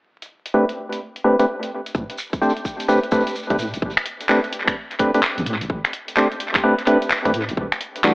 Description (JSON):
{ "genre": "UK garage, two-step garage", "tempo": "128 BPM", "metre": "4/4", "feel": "swing 64% on 16ths", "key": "A minor", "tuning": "A4 = 440 Hz", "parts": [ { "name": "breakbeat sampler-style drum kit", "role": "drums", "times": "0.2-8.1 s", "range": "finger snaps, handclaps, hi-hat", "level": "-22 LUFS", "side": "equal", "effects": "small room ambience, tape echo" }, { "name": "percussive organ stab", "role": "stabs", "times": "0.5-8.1 s", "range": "E3 to C5", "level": "-19 LUFS", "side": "equal", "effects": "chorus, tape echo" }, { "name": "deep soft wobble bass", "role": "bass", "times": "1.9-7.7 s", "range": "E1 to A2", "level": "-27 LUFS", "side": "equal", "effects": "chorus" }, { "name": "electronic kick drum", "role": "drums", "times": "1.9-7.7 s", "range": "none", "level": "-26 LUFS", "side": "equal", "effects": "small room ambience" }, { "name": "shekere", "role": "percussion", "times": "1.9-3.8 s", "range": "none", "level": "-34 LUFS", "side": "equal", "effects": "tape echo" } ], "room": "wet plate reverb, RT60 1.3 s", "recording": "echo-heavy mix, vinyl crackle, AM radio sound", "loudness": "-18 LUFS", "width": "side -23 dB against mid", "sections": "0.1-3.8 A section; 3.8-8.1 B section", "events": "filter sweep on synth stab 0.1-3.8", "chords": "0.1 Am11; 7.6 Em11", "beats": "| 0.07 0.54 1.01 1.48 | 1.95 2.42 2.88 3.35 | 3.82 4.29 4.76 5.23 | 5.70 6.17 6.63 7.10 | 7.57 8.04" }